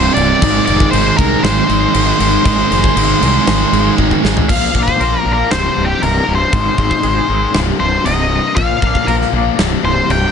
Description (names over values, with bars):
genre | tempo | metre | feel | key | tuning
quiet-loud alternative rock | 118 BPM | 4/4 | straight | unclear | A4 = 439 Hz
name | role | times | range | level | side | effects
octave-fuzz lead guitar | melody | 0.0-10.3 s | G4 to G5 | -16 LUFS | left 1 dB | distortion, analog delay
biting overdriven guitar | riff | 0.0-4.5 s | C2 to Ab3 | -16 LUFS | right 16 dB | none
tight distorted guitar | riff | 0.0-10.3 s | C2 to Bb3 | -19 LUFS | left 16 dB | distortion
fuzz fingered electric bass | bass | 0.0-10.3 s | C1 to C2 | -18 LUFS | equal | overdrive
huge arena drum kit | drums | 0.2-10.2 s | crash cymbal, kick drum, snare drum, toms | -18 LUFS | equal | none
twangy electric guitar | arpeggios | 4.5-10.3 s | C2 to Bb4 | -22 LUFS | right 1 dB | tremolo, analog delay
room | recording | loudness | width
light reverb | nothing above 10.5 kHz | -11 LUFS | side -7 dB against mid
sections
0.0-4.5 A section; 4.5-10.3 B section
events
drum fill 4.0-4.5; lead electric guitar solo 4.5-10.3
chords
0.4 Ab; 4.5 Bb; 5.5 C5; 6.5 Ab; 7.6 Cm; 8.6 Bb; 9.6 C5